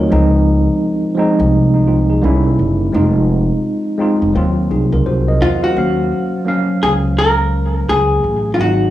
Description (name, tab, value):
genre	lo-fi hip hop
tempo	85 BPM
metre	4/4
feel	swing 62% on 16ths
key	Eb dorian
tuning	A4 = 438 Hz
part	tine electric piano	accompaniment	0.0-8.9 s	F3 to Ab5	-16 LUFS	equal	overdrive, fast stereo tremolo
part	upright bass	bass	0.0-8.9 s	F1 to Fb2	-15 LUFS	equal	none
part	vintage hollow-body jazz guitar	melody	5.4-8.9 s	F4 to Bb4	-16 LUFS	left 1 dB	none
room	light reverb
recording	dry, gritty hardware recording, cassette tape, studio reverb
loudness	-12 LUFS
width	side -14 dB against mid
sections	0.0-5.8 A section; 5.8-8.9 B section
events	none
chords	0.1 Dbmaj9; 2.2 C7b9; 2.9 Fm7; 4.4 Ebm69; 5.8 Ebm9 (rootless)